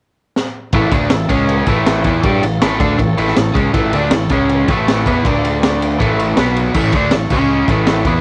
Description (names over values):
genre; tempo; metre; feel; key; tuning
garage rock duo or trio; 160 BPM; 4/4; straight; A major; A4 = 437 Hz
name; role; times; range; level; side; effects
crunchy breakbeat drum kit; drums; 0.4-8.1 s; crash cymbal, kick drum, ride cymbal, snare drum; -19 LUFS; equal; none
overdriven combo organ; sustained chords; 0.7-8.1 s; B3 to E5; -28 LUFS; equal; none
overdriven electric guitar; riff; 0.7-8.2 s; A2 to G4; -18 LUFS; equal; none
fuzz fingered electric bass; bass; 0.7-8.2 s; A1 to G2; -23 LUFS; equal; overdrive
room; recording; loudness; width
small room ambience; none; -15 LUFS; mono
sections
0.7-8.2 A section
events
drum fill 0.4-0.7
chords
0.0 N.C.; 0.7 A; 1.3 C#5; 1.7 A; 4.3 C#5; 4.7 A; 5.3 D5; 6.0 A; 6.4 B5; 6.8 A; 7.3 C#5; 7.7 A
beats
0.36 | 0.74 1.12 1.50 1.87 | 2.25 2.63 3.00 3.38 | 3.76 4.13 4.51 4.88 | 5.26 5.63 6.01 6.38 | 6.75 7.13 7.50 7.88